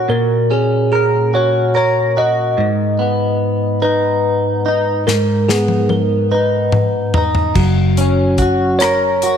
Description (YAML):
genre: six-eight pop ballad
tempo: 48 BPM (dotted quarters)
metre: 6/8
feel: straight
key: F# major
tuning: A4 = 439 Hz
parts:
  - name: bell-like tine electric piano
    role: melody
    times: 0.0-9.4 s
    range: G#4 to D#5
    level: -17 LUFS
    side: equal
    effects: slapback echo
  - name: direct-recorded clean electric guitar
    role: accompaniment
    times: 0.0-9.4 s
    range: G#2 to A#4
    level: -15 LUFS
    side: equal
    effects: double-tracked left and right
  - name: modern studio drum kit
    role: drums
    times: 5.1-9.4 s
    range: crash cymbal, hi-hat, kick drum, rim click, snare drum, toms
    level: -19 LUFS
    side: left 3 dB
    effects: none
  - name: vintage muted fingered electric bass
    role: bass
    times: 7.6-9.4 s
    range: F#1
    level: -17 LUFS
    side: equal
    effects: none
room: moderate echo chamber reverb, RT60 2.3 s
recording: 1960s-style stereo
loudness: -13 LUFS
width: side -8 dB against mid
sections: 0.0-7.6 A section; 7.6-9.4 B section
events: drum fill 5.1-7.6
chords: 0.0 F#/A#; 2.6 G#m; 7.6 F#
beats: | 0.08 1.33 | 2.57 3.82 | 5.06 6.31 | 7.55 8.80